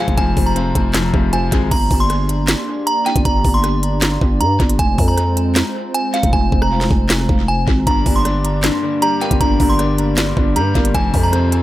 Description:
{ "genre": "hip hop, trap", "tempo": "156 BPM", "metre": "4/4", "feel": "half-time", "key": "G phrygian", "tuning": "A4 = 440 Hz", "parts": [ { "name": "delicate synth tine bell", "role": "melody", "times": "0.0-11.6 s", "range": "F5 to C6", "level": "-21 LUFS", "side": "right 1 dB", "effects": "chorus, tape echo" }, { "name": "clear concert grand piano", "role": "accompaniment", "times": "0.0-1.7, 7.9-11.6 s", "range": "F2 to D4", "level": "-21 LUFS", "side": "left 4 dB", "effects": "tape echo" }, { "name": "growling 808-style bass", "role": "bass", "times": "0.1-11.6 s", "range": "F1 to G2", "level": "-18 LUFS", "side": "equal", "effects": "none" }, { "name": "trap drum kit", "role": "drums", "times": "0.1-11.6 s", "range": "crash cymbal, handclaps, hi-hat, kick drum, rim click, snare drum", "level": "-18 LUFS", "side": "equal", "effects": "tape echo" }, { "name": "hollow soft pad", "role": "sustained chords", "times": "1.7-11.6 s", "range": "Ab3 to D5", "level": "-24 LUFS", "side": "right 1 dB", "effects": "chorus" } ], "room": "light reverb, digital ambience", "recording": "echo-heavy mix", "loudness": "-14 LUFS", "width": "side -15 dB against mid", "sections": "0.0-1.7 A section; 1.7-11.6 B section", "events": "hi-hats muted 6.3-7.9", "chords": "0.0 Fm; 1.7 Gm; 4.8 Fm; 7.9 Gm; 10.9 Fm" }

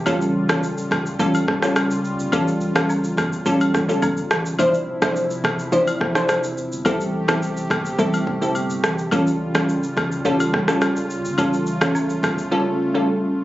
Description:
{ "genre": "afrobeats", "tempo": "106 BPM", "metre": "4/4", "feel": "straight", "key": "unclear", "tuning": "A4 = 440 Hz", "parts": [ { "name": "warm analog pad", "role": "sustained chords", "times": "0.0-13.4 s", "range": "C3 to G4", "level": "-27 LUFS", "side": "equal", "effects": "chorus, phaser" }, { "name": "glassy wavetable pluck", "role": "accompaniment", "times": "0.1-13.2 s", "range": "F3 to C5", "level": "-21 LUFS", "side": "equal", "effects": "chorus" }, { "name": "warm sub bass", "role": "bass", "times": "0.1-12.5 s", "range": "D1 to C#2", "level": "-30 LUFS", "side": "equal", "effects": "none" }, { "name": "afro-pop drum kit", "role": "drums", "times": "0.1-12.5 s", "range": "kick drum, rim click, shaker", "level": "-23 LUFS", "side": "equal", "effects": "none" }, { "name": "agogo bells and woodblock", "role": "percussion", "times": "0.1-12.4 s", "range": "none", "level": "-30 LUFS", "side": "left 3 dB", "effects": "none" } ], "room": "light reverb", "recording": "recorded on a phone in the room, club reverb, compression, nothing above 7.7 kHz", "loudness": "-18 LUFS", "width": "side -15 dB against mid", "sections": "0.0-13.4 A section", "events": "none", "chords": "0.1 A7b13; 4.6 Dm9; 6.9 Am7; 9.1 A7b13" }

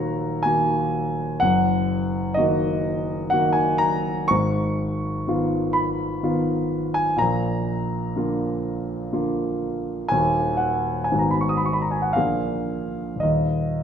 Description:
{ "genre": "classical, romantic nocturne for solo piano", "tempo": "55-64 BPM", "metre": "3/4", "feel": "rubato", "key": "Eb minor", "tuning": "A4 = 440 Hz", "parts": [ { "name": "warm concert grand piano", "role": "solo", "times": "0.0-13.8 s", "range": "Eb1 to Eb6", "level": "-20 LUFS", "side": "equal", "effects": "none" } ], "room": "wet recital hall reverb, RT60 1.7 s", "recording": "minimal, uncompressed stereo recording", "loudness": "-20 LUFS", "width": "side -8 dB against mid", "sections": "0.0-13.8 A section", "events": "none", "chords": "0.0 Ebm; 1.4 Ebm/Gb; 4.3 Fm7b5/Ab; 7.2 Bb; 10.1 Ebm; 11.1 Abm7; 12.2 Bb7; 13.2 N.C." }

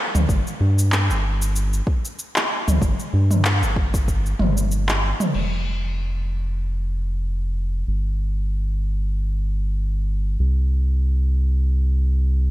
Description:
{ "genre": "organic downtempo", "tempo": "95 BPM", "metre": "4/4", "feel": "swing 56% on 16ths", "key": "unclear", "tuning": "A4 = 442 Hz", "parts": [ { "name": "round analog bass", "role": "bass", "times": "0.1-12.5 s", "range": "F1 to G2", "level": "-20 LUFS", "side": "equal", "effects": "sidechain pumping" }, { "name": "organic electronic drum kit", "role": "drums", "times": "0.1-5.5 s", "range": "cabasa, crash cymbal, handclaps, toms", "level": "-23 LUFS", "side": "equal", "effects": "overdrive, low-pass filter on perc, low-pass filter on snare, low-pass filter on toms, low-pass filter on cymbals, low-pass filter on room" }, { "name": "electronic kick drum", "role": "drums", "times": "0.3-4.2 s", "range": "none", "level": "-22 LUFS", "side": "equal", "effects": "overdrive" } ], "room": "little or no reverb", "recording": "none", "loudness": "-19 LUFS", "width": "side -16 dB against mid", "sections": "0.0-5.3 A section; 5.3-12.5 B section", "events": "none", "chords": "none" }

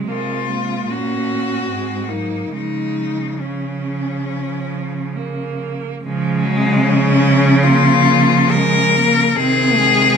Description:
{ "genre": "classical, lyrical piece for cello ensemble", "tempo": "64-77 BPM", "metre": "4/4", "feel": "rubato", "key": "Db major", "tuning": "A4 = 441 Hz", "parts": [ { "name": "clear cello", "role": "second line", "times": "0.0-10.2 s", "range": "Db3 to Db4", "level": "-23 LUFS", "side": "right 8 dB", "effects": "none" }, { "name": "rich cello", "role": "accompaniment", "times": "0.0-10.2 s", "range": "F3 to C4", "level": "-22 LUFS", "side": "left 3 dB", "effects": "none" }, { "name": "rich cello", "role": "bass", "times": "0.0-10.2 s", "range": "Ab2 to Db3", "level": "-19 LUFS", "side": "right 3 dB", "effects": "none" }, { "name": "rich cello", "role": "melody", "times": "0.1-10.2 s", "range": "Db4 to Bb4", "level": "-18 LUFS", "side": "left 6 dB", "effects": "none" } ], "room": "moderate large studio reverb, RT60 1.2 s", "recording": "minimal, uncompressed stereo recording", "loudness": "-14 LUFS", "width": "side -6 dB against mid", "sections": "0.0-6.0 A section; 6.0-10.2 B section", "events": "none", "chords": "0.0 Db (rootless); 0.9 Gb/Bb; 1.7 Ab9; 2.5 Db; 9.4 Ab/C" }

